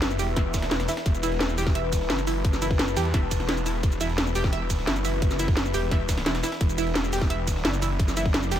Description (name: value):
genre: dark technical drum and bass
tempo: 173 BPM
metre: 4/4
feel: straight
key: unclear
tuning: A4 = 440 Hz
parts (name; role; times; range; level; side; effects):
- deep dark ambient pad; sustained chords; 0.0-8.6 s; E4 to A5; -32 LUFS; left 3 dB; chorus, built-in reverb, sidechain pumping
- snarling distorted saw bass; bass; 0.0-8.6 s; E1 to E2; -28 LUFS; equal; overdrive, sidechain pumping
- breakbeat sampler-style drum kit; drums; 0.0-8.6 s; hi-hat, snare drum; -38 LUFS; equal; none
- drum and bass drum kit; drums; 0.0-8.6 s; hi-hat, ride cymbal, shaker, snare drum; -29 LUFS; equal; none
- analog pluck; arpeggios; 0.2-8.6 s; E4 to E5; -31 LUFS; right 3 dB; chorus, cassette tape, sidechain pumping, ping-pong delay
- electronic kick drum; drums; 0.4-8.3 s; none; -24 LUFS; equal; none
room: digital ambience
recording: none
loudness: -22 LUFS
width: side -10 dB against mid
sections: 0.0-8.6 A section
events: none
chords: 0.0 Em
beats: 0.02 0.36 0.71 | 1.06 1.41 1.75 2.10 | 2.45 2.79 3.14 3.49 | 3.83 4.18 4.53 4.87 | 5.22 5.57 5.91 6.26 | 6.61 6.96 7.30 7.65 | 8.00 8.34